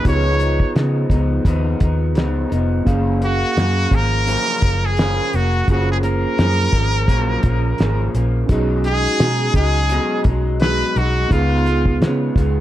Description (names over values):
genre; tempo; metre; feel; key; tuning
indie pop, bedroom pop; 85 BPM; 4/4; swing 55% on 16ths; F# major; A4 = 441 Hz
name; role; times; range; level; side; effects
brilliant trumpet; melody; 0.0-12.0 s; E#4 to C#5; -21 LUFS; equal; wide subtle chorus
electric guitar through a small old amp; accompaniment; 0.0-12.6 s; F#2 to E#4; -24 LUFS; left 1 dB; lush chorus, vibrato effect
mellow tine electric piano; accompaniment; 0.0-12.6 s; A#3 to E#5; -25 LUFS; right 3 dB; fast stereo tremolo, cassette tape
vintage muted fingered electric bass; bass; 0.1-12.6 s; E#1 to C#3; -19 LUFS; equal; none
cloth-damped thuddy drum kit; drums; 0.1-12.5 s; hi-hat, kick drum, snare drum; -18 LUFS; equal; none
room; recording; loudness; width
light reverb; dark, warm production; -15 LUFS; side -13 dB against mid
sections
0.0-12.6 A section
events
none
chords
0.1 C#9; 2.9 F#maj7; 8.5 B6; 11.3 C#7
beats
| 0.05 0.76 1.46 2.16 | 2.87 3.57 4.28 4.98 | 5.68 6.39 7.09 7.79 | 8.50 9.20 9.90 10.61 | 11.31 12.01